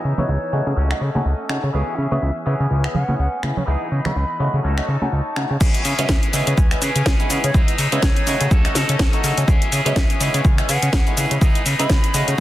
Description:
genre	filtered disco house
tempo	124 BPM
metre	4/4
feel	swing 57% on 16ths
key	C# minor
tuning	A4 = 440 Hz
part	warm chamber violin section	sustained chords	0.0-12.4 s	C#4 to E6	-30 LUFS	left 3 dB	sidechain pumping, low-pass filter
part	electric guitar with an envelope filter	riff	0.0-12.4 s	D#3 to A4	-27 LUFS	right 1 dB	vintage 12-bit sampler grit, sidechain pumping, low-pass filter
part	fat analog bass	bass	0.0-12.3 s	C#2 to C#3	-21 LUFS	equal	sidechain pumping, low-pass filter
part	tambourine and congas	percussion	0.0-5.6 s	none	-28 LUFS	right 2 dB	sidechain pumping on perc, low-pass filter on perc
part	breathy mellow silver concert flute	melody	0.2-12.3 s	C#5 to B5	-30 LUFS	equal	sidechain pumping, low-pass filter, dub echo
part	overdriven clav	accompaniment	0.2-12.4 s	F#3 to G#4	-27 LUFS	equal	phaser, sidechain pumping, low-pass filter
part	house drum kit	drums	0.9-12.4 s	crash cymbal, finger snaps, hi-hat, shaker, snare drum	-24 LUFS	left 1 dB	soft clipping on snare, sidechain pumping on cymbals, sidechain pumping on perc, sidechain pumping on hats
part	electronic kick drum	drums	5.6-12.0 s	none	-17 LUFS	equal	overdrive
room	digital ambience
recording	dense, heavily limited modern master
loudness	-16 LUFS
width	side -14 dB against mid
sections	0.0-5.6 A section; 5.6-12.4 B section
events	filter sweep 0.0-5.6; drop 5.6-12.4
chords	0.0 C#m9; 0.8 F#m6/C#; 1.7 E6/C#; 2.5 C#m7; 3.7 C#m9; 4.6 F#m6/C#; 5.6 E6/C#; 6.3 C#m7; 7.5 C#m9; 8.5 F#m6/C#; 9.5 E6/C#; 10.2 C#m7; 11.4 C#m9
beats	0.29 0.77 1.25 | 1.74 2.22 2.71 3.19 | 3.67 4.16 4.64 5.12 | 5.61 6.09 6.58 7.06 | 7.54 8.03 8.51 9.00 | 9.48 9.96 10.45 10.93 | 11.41 11.90 12.38

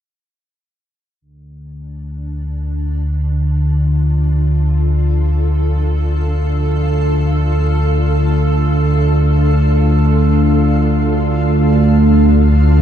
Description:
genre	dark ambient drone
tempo	free time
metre	none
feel	none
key	D minor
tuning	A4 = 440 Hz
part	granular cloud pad	sustained chords	2.7-12.8 s	D4 to F5	-21 LUFS	right 1 dB	built-in reverb
part	analog drone	drone	1.7-12.8 s	D2 to D3	-12 LUFS	equal	lush chorus
room	light reverb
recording	none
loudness	-12 LUFS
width	side -9 dB against mid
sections	1.2-12.8 A section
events	fade-in on ambient pad 1.2-12.8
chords	1.2 Dm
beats	free time

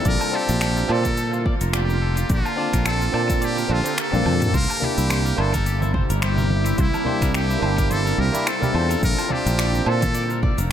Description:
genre	sunset chillout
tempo	107 BPM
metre	4/4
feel	swing 56% on 16ths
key	unclear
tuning	A4 = 440 Hz
part	trumpet with metal mute	melody	0.0-10.4 s	E4 to Bb4	-26 LUFS	equal	tape echo
part	barky tine electric piano	accompaniment	0.0-10.0 s	Bb3 to A5	-26 LUFS	moving between left 6 dB and right 6 dB	auto-pan, tape echo
part	shimmering ambient pad	sustained chords	0.0-10.7 s	C3 to G4	-28 LUFS	equal	chorus, built-in reverb
part	clean electric guitar	arpeggios	0.0-10.7 s	E4 to A5	-33 LUFS	left 4 dB	tape echo
part	fretless electric bass	bass	0.1-10.7 s	F1 to Bb2	-22 LUFS	equal	tube saturation
part	deep house drum kit	drums	0.1-10.7 s	finger snaps, hi-hat, shaker, toms, woodblock	-28 LUFS	equal	overdrive, tape echo
part	electronic kick drum	drums	0.1-10.6 s	none	-23 LUFS	equal	overdrive
part	congas	percussion	4.8-10.6 s	none	-30 LUFS	right 3 dB	none
room	light reverb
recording	echo-heavy mix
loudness	-18 LUFS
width	side -10 dB against mid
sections	0.0-10.7 A section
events	kick drops out 3.4-4.5; drum fill 4.1-4.5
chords	0.1 Bbmaj7; 4.5 C7; 9.0 Bbmaj7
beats	| 0.05 0.61 1.18 1.74 | 2.30 2.86 3.42 3.98 | 4.54 5.10 5.66 6.22 | 6.78 7.34 7.91 8.46 | 9.03 9.59 10.15 10.71

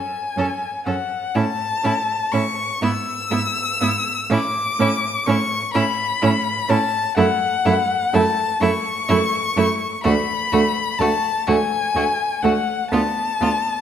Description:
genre	classical, slow romantic movement for string quartet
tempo	41 BPM (dotted quarters)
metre	6/8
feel	rubato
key	unclear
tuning	A4 = 439 Hz
part	warm violin	melody	0.0-13.8 s	F#5 to E6	-21 LUFS	left 4 dB	none
part	clear violin	second line	0.4-13.5 s	E4 to A4	-28 LUFS	equal	none
part	rich viola	accompaniment	0.4-13.5 s	A3 to C#4	-24 LUFS	right 4 dB	none
part	rich cello	bass	0.4-13.5 s	D2 to A2	-24 LUFS	right 3 dB	none
room	moderate recital hall reverb, RT60 1.6 s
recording	none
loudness	-18 LUFS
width	side -9 dB against mid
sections	0.0-13.8 A section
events	none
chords	0.0 F#5; 1.3 A; 2.8 E/G#; 4.3 A; 7.2 F#m; 10.1 D; 12.9 Bm7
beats	| 1.34 2.81 | 4.30 5.75 | 7.18 8.62 | 10.05 11.48 | 12.93

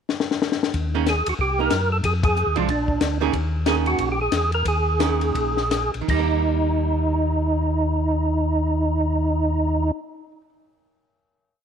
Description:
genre	soul jazz organ trio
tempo	157-185 BPM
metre	4/4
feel	swing 61% on 8ths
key	Eb mixolydian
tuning	A4 = 443 Hz
part	compact cocktail drum kit	drums	0.1-6.2 s	crash cymbal, hi-hat, kick drum, ride cymbal, snare drum	-26 LUFS	left 6 dB	none
part	mellow tonewheel organ	bass	0.7-9.9 s	Bb1 to Gb2	-23 LUFS	left 1 dB	slow rotary speaker
part	archtop guitar, miked and amplified	accompaniment	0.9-10.5 s	Eb3 to Ab4	-26 LUFS	right 11 dB	none
part	percussive tonewheel organ	melody	1.1-9.9 s	D4 to Bb4	-23 LUFS	right 2 dB	slow rotary speaker, overdrive, chorus vibrato
room	light reverb, small room ambience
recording	1960s-style stereo with parts hard left and right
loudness	-19 LUFS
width	side -7 dB against mid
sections	0.0-0.7 pickup bar; 0.7-6.1 A section; 6.1-9.1 final chord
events	drum fill 0.1-0.7; band accent 2.2; slowing down 3.3-6.1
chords	0.0 N.C.; 0.7 Eb7sus4; 1.4 Cm7; 2.0 Fm7; 2.7 Bb7; 3.3 Eb7sus4; 6.1 Eb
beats	0.09 0.41 | 0.74 1.06 1.39 1.71 | 2.04 2.36 2.68 3.01 | 3.33 3.66 3.98 4.31 | 4.65 5.00 5.35 5.71 | 6.09 6.47 6.85 7.23 | 7.62 8.00 8.38 8.77

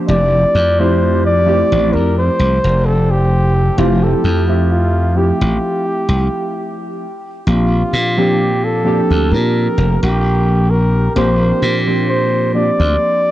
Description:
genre	vaporwave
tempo	65 BPM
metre	4/4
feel	swing 54% on 16ths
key	F major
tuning	A4 = 440 Hz
part	warbly lo-fi synth keys	accompaniment	0.0-13.3 s	F3 to E5	-18 LUFS	right 1 dB	wide subtle chorus, analog delay
part	breathy flugelhorn	melody	0.1-13.3 s	F4 to D5	-18 LUFS	equal	tape echo
part	glassy slap bass	bass	0.1-13.0 s	F1 to Bb2	-15 LUFS	equal	tube saturation
room	moderate spring reverb, RT60 2.7 s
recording	echo-heavy mix, cassette tape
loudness	-12 LUFS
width	side -14 dB against mid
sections	0.1-13.3 A section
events	none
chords	0.1 Fmaj9; 7.0 Bb69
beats	| 0.09 1.01 1.93 2.85 | 3.78 4.70 5.62 6.55 | 7.47 8.39 9.32 10.24 | 11.16 12.09 13.01

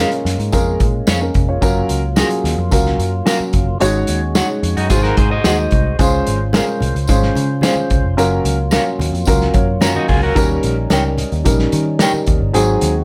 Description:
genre	uptempo 1960s-style soul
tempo	110 BPM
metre	4/4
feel	straight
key	unclear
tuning	A4 = 440 Hz
part	dark upright piano	accompaniment	0.0-12.9 s	Gb3 to Bb5	-21 LUFS	equal	none
part	tonewheel organ	sustained chords	0.0-13.0 s	Gb3 to C5	-28 LUFS	equal	slow rotary speaker
part	electric guitar through a small old amp	stabs	0.0-12.1 s	Gb4 to G5	-23 LUFS	equal	none
part	vintage muted picked electric bass	bass	0.0-13.0 s	F1 to Eb3	-21 LUFS	equal	none
part	vintage drum kit	drums	0.1-12.9 s	hi-hat, kick drum, snare drum	-20 LUFS	equal	none
part	tambourine	percussion	0.5-12.7 s	none	-31 LUFS	equal	none
part	electric guitar at the edge of break-up	riff	4.8-6.0, 10.0-10.5 s	Eb4 to Eb5	-24 LUFS	equal	spring reverb
part	congas	percussion	6.3-13.0 s	none	-31 LUFS	equal	none
room	light reverb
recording	none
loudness	-16 LUFS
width	mono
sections	0.0-13.0 A section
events	upright piano fill 9.3-10.4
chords	0.0 Bbm7; 1.6 Gbmaj7; 3.8 Ab7sus4; 4.9 Ab7; 6.0 Dbmaj7; 8.2 Gbmaj7; 10.4 Eb7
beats	0.53 1.08 | 1.62 2.17 2.72 3.26 | 3.81 4.36 4.90 5.45 | 5.99 6.54 7.09 7.63 | 8.18 8.72 9.27 9.82 | 10.36 10.91 11.46 12.00 | 12.55

